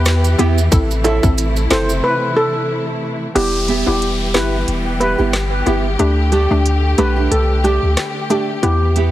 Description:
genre	dancehall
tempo	91 BPM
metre	4/4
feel	swing 56% on 16ths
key	E minor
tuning	A4 = 440 Hz
part	warm studio string section	sustained chords	0.0-9.1 s	C3 to G4	-23 LUFS	left 1 dB	sidechain pumping
part	punchy sub bass	bass	0.0-9.1 s	E1 to E2	-17 LUFS	equal	none
part	island pop drum kit	drums	0.1-9.1 s	crash cymbal, handclaps, hi-hat, kick drum, rim click, snare drum	-21 LUFS	equal	none
part	maracas and timbales	percussion	0.1-2.0 s	none	-26 LUFS	right 7 dB	none
part	hollow square pluck	accompaniment	0.4-9.1 s	A3 to A4	-21 LUFS	left 2 dB	chorus, sidechain pumping
part	nylon-string guitar	arpeggios	0.4-9.1 s	A3 to A4	-23 LUFS	right 6 dB	none
part	steel pan	melody	1.0-8.7 s	G4 to C5	-20 LUFS	equal	digital delay
part	downlifter	sound effects	3.4-8.6 s	none	-28 LUFS	equal	none
room	light reverb, small room ambience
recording	heavily compressed radio sound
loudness	-14 LUFS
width	side -14 dB against mid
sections	0.0-3.4 A section; 3.4-9.1 B section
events	break 2.0-3.4; kick muted 3.4-9.1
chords	0.0 Em; 0.7 Am; 3.4 Em; 6.0 Dsus4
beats	0.06 | 0.72 1.38 2.04 2.70 | 3.36 4.01 4.67 5.33 | 5.99 6.65 7.31 7.97 | 8.63

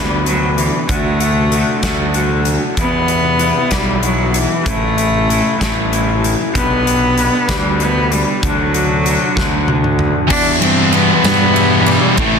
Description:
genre	quiet-loud alternative rock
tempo	64 BPM (dotted quarters)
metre	6/8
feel	straight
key	unclear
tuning	A4 = 440 Hz
part	clear cello	melody	0.0-12.4 s	E3 to D4	-17 LUFS	left 1 dB	none
part	electric guitar through a small old amp	arpeggios	0.0-10.3 s	E2 to B4	-19 LUFS	left 1 dB	none
part	fuzz fingered electric bass	bass	0.0-12.4 s	A1 to G2	-19 LUFS	equal	overdrive
part	huge arena drum kit	drums	0.3-12.3 s	crash cymbal, hi-hat, kick drum, ride cymbal, snare drum, toms	-19 LUFS	equal	soft clipping on kick
part	fuzz guitar	riff	10.3-12.4 s	E2 to A3	-18 LUFS	right 12 dB	distortion
part	thick fuzz guitar	riff	10.3-12.4 s	E2 to A3	-17 LUFS	left 14 dB	distortion
part	tight distorted guitar	riff	10.3-12.4 s	A2 to E4	-18 LUFS	equal	distortion
room	light reverb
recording	dense, heavily limited modern master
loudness	-12 LUFS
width	side -6 dB against mid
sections	0.0-10.3 A section; 10.3-12.4 B section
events	drum fill 9.4-10.3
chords	0.0 G; 0.9 D; 2.8 Em; 4.7 A; 6.5 G/B; 8.4 D; 10.3 Em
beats	| 0.88 1.82 | 2.77 3.71 | 4.65 5.59 | 6.54 7.48 | 8.42 9.36 | 10.30 11.24 | 12.18

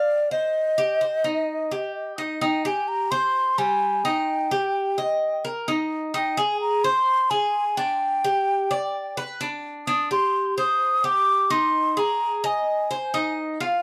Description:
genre	latin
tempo	129 BPM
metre	4/4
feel	straight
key	C minor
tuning	A4 = 441 Hz
part	mellow hollow concert flute	melody	0.0-13.8 s	D5 to Eb6	-24 LUFS	equal	tape echo
part	Cuban tres	arpeggios	0.0-13.8 s	G3 to F5	-29 LUFS	equal	none
room	light reverb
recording	dry, close 1970s-style studio recording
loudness	-23 LUFS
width	mono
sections	0.0-2.4 A section; 2.4-13.8 B section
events	none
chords	0.0 G7(no3) (rootless); 0.5 Cm; 4.3 Eb; 6.1 Ab; 8.0 G; 9.9 Cmadd9; 11.7 Ab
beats	0.08 | 0.54 1.01 1.48 1.95 | 2.41 2.88 3.35 3.81 | 4.28 4.75 5.21 5.68 | 6.14 6.61 7.08 7.54 | 8.01 8.47 8.94 9.41 | 9.87 10.34 10.81 11.27 | 11.74 12.21 12.67 13.14 | 13.60

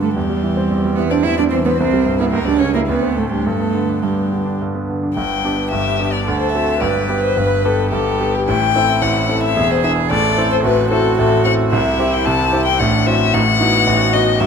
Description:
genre	quick classical-period movement for piano trio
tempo	110 BPM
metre	3/4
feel	rubato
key	G major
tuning	A4 = 439 Hz
part	rich violin	melody	0.0-14.5 s	G4 to A5	-19 LUFS	left 9 dB	none
part	warm cello	second line	0.0-14.5 s	G3 to B4	-20 LUFS	right 7 dB	none
part	bright concert grand piano	accompaniment	0.0-14.5 s	E1 to B4	-17 LUFS	right 1 dB	none
room	moderate recital hall reverb, RT60 1.7 s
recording	close, detailed microphones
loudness	-14 LUFS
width	side -6 dB against mid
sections	0.0-5.2 A section; 5.2-14.5 B section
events	none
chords	0.2 C/E; 1.8 C; 2.3 C#dim; 2.9 D5; 3.4 G; 6.3 D7; 6.8 G; 8.5 Am; 9.6 E7; 10.1 Am; 11.7 C; 12.8 F#m7b5/A; 13.3 B7/A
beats	| 0.16 0.70 1.24 | 1.78 2.32 2.87 | 3.45 4.03 4.60 | 5.16 5.72 6.26 | 6.81 7.37 7.92 | 8.47 9.01 9.56 | 10.11 10.65 11.19 | 11.72 12.26 12.79 | 13.33 13.86 14.39

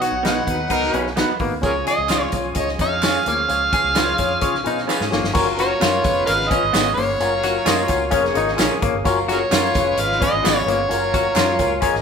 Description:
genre	uptempo 1960s-style soul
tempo	130 BPM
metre	4/4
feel	straight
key	F# major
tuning	A4 = 440 Hz
part	overdriven harmonica	melody	0.0-12.0 s	G#4 to F#5	-21 LUFS	right 1 dB	none
part	warm horn section	second line	0.0-1.1, 5.4-12.0 s	F#3 to D#5	-27 LUFS	left 1 dB	none
part	barky tine electric piano	accompaniment	0.0-12.0 s	B2 to D#5	-23 LUFS	left 3 dB	phaser
part	semi-hollow electric guitar	riff	0.0-11.8 s	A#3 to G#4	-26 LUFS	left 4 dB	none
part	natural country drum kit	drums	0.0-12.0 s	crash cymbal, hi-hat, kick drum, snare drum	-24 LUFS	equal	none
part	vintage muted fingered electric bass	bass	0.1-12.0 s	E#1 to C#3	-29 LUFS	equal	none
part	electric guitar through a small old amp	stabs	0.2-11.5 s	A#3 to C#5	-27 LUFS	right 4 dB	none
part	overdriven tonewheel organ	sustained chords	1.6-12.0 s	C#3 to G#4	-31 LUFS	right 1 dB	slow rotary speaker
part	tambourine and handclaps	percussion	1.6-11.9 s	none	-32 LUFS	right 5 dB	none
room	wet large studio reverb, RT60 1.1 s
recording	band playing live in one room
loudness	-16 LUFS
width	side -6 dB against mid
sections	0.0-5.4 A section; 5.4-12.0 B section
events	drum fill 4.9-5.4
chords	0.0 B; 1.6 C#; 5.4 F#maj7; 6.0 C#7/E#; 7.2 F#maj7; 8.1 A#m7/E#; 9.1 F#maj7; 9.7 C#7/E#; 10.9 F#maj7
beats	0.24 0.70 1.17 | 1.64 2.10 2.56 3.03 | 3.50 3.96 4.42 4.89 | 5.35 5.82 6.28 6.74 | 7.20 7.67 8.13 8.59 | 9.05 9.52 9.98 10.44 | 10.90 11.37 11.83

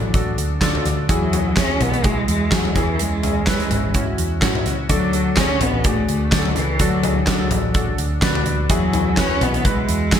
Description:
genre	piano-driven pop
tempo	126 BPM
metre	4/4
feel	swing 56% on 16ths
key	unclear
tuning	A4 = 440 Hz
part	warm cello	melody	0.0-10.2 s	E3 to C#4	-22 LUFS	left 1 dB	none
part	clear concert grand piano	accompaniment	0.0-10.2 s	D3 to B4	-24 LUFS	left 1 dB	analog chorus
part	vintage muted picked electric bass	bass	0.0-10.2 s	G#1 to G#2	-24 LUFS	equal	none
part	huge arena drum kit	drums	0.1-10.2 s	handclaps, hi-hat, kick drum, snare drum, toms	-20 LUFS	equal	gated reverb
room	light reverb, small room ambience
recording	bright 1980s-style digital production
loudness	-16 LUFS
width	side -9 dB against mid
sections	0.0-10.2 A section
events	none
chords	0.0 D; 1.1 Eadd9; 2.8 C#m; 4.9 D; 8.7 Eadd9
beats	0.14 0.61 | 1.09 1.57 2.04 2.52 | 2.99 3.47 3.94 4.42 | 4.90 5.37 5.85 6.32 | 6.80 7.27 7.75 8.22 | 8.70 9.18 9.65 10.13

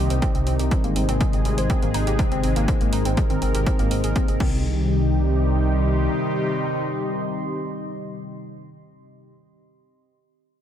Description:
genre	melodic techno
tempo	122 BPM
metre	4/4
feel	straight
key	C minor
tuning	A4 = 438 Hz
part	sweeping resonant pad	sustained chords	0.0-9.3 s	C3 to Bb4	-26 LUFS	left 1 dB	chorus, sidechain pumping
part	dark detuned saw bass	bass	0.0-6.1 s	Ab1 to C2	-23 LUFS	equal	sidechain pumping
part	warbly tape-like pad	texture	0.0-9.3 s	C4 to C6	-31 LUFS	right 1 dB	chorus, built-in reverb, sidechain pumping
part	woody wave-folded pluck	arpeggios	0.1-4.9 s	G3 to Eb6	-29 LUFS	equal	analog chorus, sidechain pumping, tape echo
part	punchy analog drum machine	drums	0.1-4.5 s	crash cymbal, hi-hat	-36 LUFS	right 3 dB	overdrive
part	electronic kick drum	drums	0.2-4.5 s	none	-22 LUFS	equal	overdrive
room	light reverb, digital ambience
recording	none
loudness	-19 LUFS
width	side -10 dB against mid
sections	0.0-4.6 A section; 4.6-8.6 B section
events	drop 0.0-4.6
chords	0.0 Cm; 0.7 Ab; 4.4 Cm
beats	0.22 | 0.71 1.21 1.70 2.19 | 2.68 3.17 3.67 4.16 | 4.65 5.14 5.63 6.12 | 6.62 7.11 7.60 8.09

